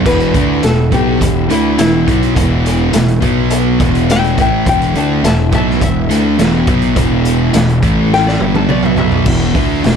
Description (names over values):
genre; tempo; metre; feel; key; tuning
stoner and doom metal; 104 BPM; 4/4; straight; E minor; A4 = 436 Hz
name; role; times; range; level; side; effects
string machine, cellos; sustained chords; 0.0-10.0 s; A3 to E5; -24 LUFS; right 1 dB; none
thick fuzz guitar; riff; 0.0-10.0 s; E2 to D4; -17 LUFS; left 12 dB; distortion
thick fuzz guitar; riff; 0.0-10.0 s; E2 to D4; -16 LUFS; right 11 dB; distortion
fuzz fingered electric bass; bass; 0.0-10.0 s; E1 to D2; -18 LUFS; equal; overdrive, tube saturation
nylon-string guitar; melody; 0.1-9.3 s; E4 to A5; -18 LUFS; left 4 dB; none
raw garage drum kit; drums; 0.1-10.0 s; crash cymbal, hi-hat, kick drum, snare drum, toms; -16 LUFS; equal; none
room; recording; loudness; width
light reverb; none; -10 LUFS; side -7 dB against mid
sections
0.0-9.3 A section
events
nylon-string guitar solo 0.0-9.3; drum fill 8.1-9.3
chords
0.1 E5; 3.2 B5; 3.8 E5; 7.8 A5; 8.4 Em; 8.7 B5; 9.3 E5